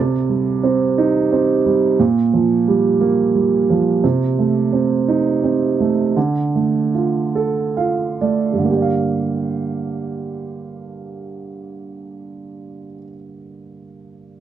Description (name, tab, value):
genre	pop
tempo	42-59 BPM (dotted quarters)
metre	6/8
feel	straight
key	G minor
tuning	A4 = 441 Hz
part	warm upright piano	accompaniment	0.0-14.4 s	G2 to F5	-16 LUFS	right 4 dB	none
room	little or no reverb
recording	dry, close 1970s-style studio recording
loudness	-15 LUFS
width	side -10 dB against mid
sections	0.0-8.7 A section; 8.7-14.4 B section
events	slowing down 4.0-8.7; upright piano fill 7.4-8.7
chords	0.0 Cm; 2.0 Gm7/Bb; 4.0 Adim/C; 6.2 Dm; 8.7 Gm7